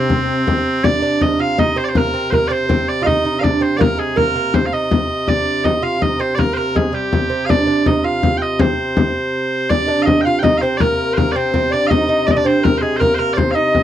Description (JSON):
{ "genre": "medieval dance", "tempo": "108 BPM (dotted quarters)", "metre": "6/8", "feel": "straight", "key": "C minor", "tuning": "A4 = 440 Hz", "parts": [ { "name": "loud bright bagpipes", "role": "melody", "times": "0.0-13.8 s", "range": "C4 to G5", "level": "-19 LUFS", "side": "right 1 dB", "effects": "none" }, { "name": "lute", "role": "second line", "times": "0.0-13.8 s", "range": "C3 to F4", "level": "-20 LUFS", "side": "right 5 dB", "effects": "none" }, { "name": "mellow tenor recorder", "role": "second line", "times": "0.0-0.4, 9.7-13.8 s", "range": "C4 to F5", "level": "-20 LUFS", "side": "left 4 dB", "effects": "none" }, { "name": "dark hurdy-gurdy", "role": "drone", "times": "0.0-13.8 s", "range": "C3", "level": "-23 LUFS", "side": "right 1 dB", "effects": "none" }, { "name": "frame drum", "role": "percussion", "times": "0.1-13.8 s", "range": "none", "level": "-18 LUFS", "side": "left 3 dB", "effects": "none" } ], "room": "moderate booth ambience, RT60 0.2 s", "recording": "dry, close 1970s-style studio recording", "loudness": "-14 LUFS", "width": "side -11 dB against mid", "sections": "0.8-9.7 A section; 9.7-13.8 A section", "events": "none", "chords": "none" }